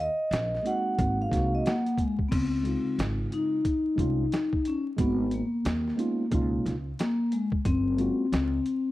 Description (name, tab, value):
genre	hip hop, jazz-hop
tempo	90 BPM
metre	4/4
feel	swing 64% on 16ths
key	Db major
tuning	A4 = 441 Hz
part	vibraphone with soft mallets	melody	0.0-8.9 s	Ab3 to Gb5	-28 LUFS	left 2 dB	none
part	upright bass	bass	0.0-8.6 s	Gb1 to Eb2	-30 LUFS	equal	none
part	boom bap sampler-style drum kit	drums	0.3-8.9 s	crash cymbal, hi-hat, kick drum, snare drum	-31 LUFS	equal	none
part	mellow tine electric piano	accompaniment	0.6-8.3 s	Cb3 to Gb4	-31 LUFS	right 3 dB	auto-pan
room	digital ambience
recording	dry, close 1970s-style studio recording, vinyl crackle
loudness	-25 LUFS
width	side -16 dB against mid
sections	0.0-2.3 A section; 2.3-8.9 B section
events	vibraphone solo 0.0-2.3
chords	0.0 Ebm; 1.0 Ab7; 2.3 Dbmaj7; 5.0 Abm7; 6.3 Db7; 7.7 Gbmaj7